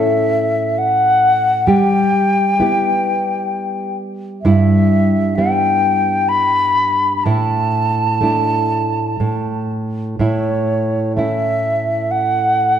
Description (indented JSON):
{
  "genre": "celtic folk",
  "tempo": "59-67 BPM",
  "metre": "3/4",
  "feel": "rubato",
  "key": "unclear",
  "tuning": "A4 = 441 Hz",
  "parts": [
    { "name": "reedy wooden flute", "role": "melody", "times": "0.0-12.8 s", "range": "C#5 to B5", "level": "-16 LUFS", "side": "left 1 dB", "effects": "none" },
    { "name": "nylon-string guitar", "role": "accompaniment", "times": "0.0-12.8 s", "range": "G2 to A4", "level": "-17 LUFS", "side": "right 1 dB", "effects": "none" }
  ],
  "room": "moderate concert hall reverb, RT60 2.0 s",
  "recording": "none",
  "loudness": "-14 LUFS",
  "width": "side -9 dB against mid",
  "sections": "0.0-12.8 A section",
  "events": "none",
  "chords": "0.0 A; 1.7 Em/G; 7.2 Asus4; 9.2 N.C.; 10.2 A",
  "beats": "0.76 | 1.66 2.58 3.50 | 4.42 5.35 6.29 | 7.24 8.21 9.22 | 10.21 11.18 12.13"
}